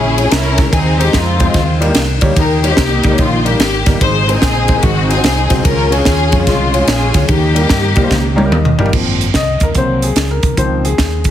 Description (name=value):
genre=uptempo gospel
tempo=146 BPM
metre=4/4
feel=swing 65% on 8ths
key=Ab major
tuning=A4 = 440 Hz
part: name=warm studio string section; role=melody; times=0.0-8.5 s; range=Ab3 to C5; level=-16 LUFS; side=left 2 dB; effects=none
part: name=fingered electric bass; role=bass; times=0.0-11.3 s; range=G1 to G2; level=-16 LUFS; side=right 1 dB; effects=none
part: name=warm concert grand piano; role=accompaniment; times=0.2-11.3 s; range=Ab2 to Bb5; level=-18 LUFS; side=left 2 dB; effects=none
part: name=crisp fusion drum kit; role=drums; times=0.2-11.3 s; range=crash cymbal, hi-hat, kick drum, ride cymbal, snare drum, toms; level=-14 LUFS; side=equal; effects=none
room=light reverb, small room ambience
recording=heavily compressed radio sound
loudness=-10 LUFS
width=side -11 dB against mid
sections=0.0-8.9 A section; 8.9-11.3 B section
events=drum fill 8.1-8.9; grand piano fill 8.1-8.9; grand piano solo 8.9-11.3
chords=0.0 Dbm; 0.7 Ab/Eb; 1.6 Eb; 4.0 Ab; 4.8 Ab7; 5.7 Db; 7.3 Eb; 8.9 Ab69; 9.8 Ab9/C; 10.6 Dbmaj9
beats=0.32 | 0.73 1.14 1.55 1.96 | 2.37 2.78 3.19 3.60 | 4.01 4.42 4.83 5.24 | 5.65 6.06 6.47 6.88 | 7.29 7.70 8.11 8.52 | 8.93 9.35 9.76 10.17 | 10.58 10.99